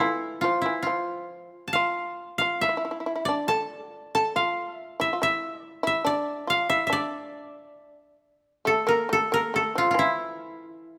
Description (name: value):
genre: japanese traditional, Japanese chamber music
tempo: 69 BPM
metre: 2/4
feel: rubato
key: D hirajoshi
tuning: A4 = 439 Hz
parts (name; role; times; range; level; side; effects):
- koto; melody; 0.0-11.0 s; E4 to A5; -28 LUFS; equal; none
- shamisen; second line; 0.0-11.0 s; E3 to A4; -31 LUFS; equal; none
room: moderate scoring stage reverb, RT60 1.6 s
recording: none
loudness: -26 LUFS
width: mono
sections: 0.0-8.6 A section; 8.6-11.0 B section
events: none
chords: none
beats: | 0.01 0.88 | 1.75 2.62 | 3.49 4.36 | 5.21 6.05 | 6.89 7.75 | 8.64 9.53 | 10.39